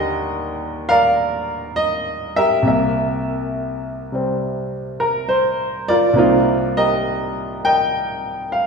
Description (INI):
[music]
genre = solo jazz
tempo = 68 BPM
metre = 4/4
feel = swing 69% on 8ths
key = unclear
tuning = A4 = 440 Hz
[part]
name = warm grand piano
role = solo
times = 0.0-8.7 s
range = C2 to G5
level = -17 LUFS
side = equal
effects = none
[sound]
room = wet recital hall reverb, RT60 1.3 s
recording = recorded in a church or concert hall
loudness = -17 LUFS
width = side -5 dB against mid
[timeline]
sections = 0.0-6.2 A section; 6.2-8.7 B section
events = none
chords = 0.0 Ebmaj7; 2.6 C7; 6.2 Cm7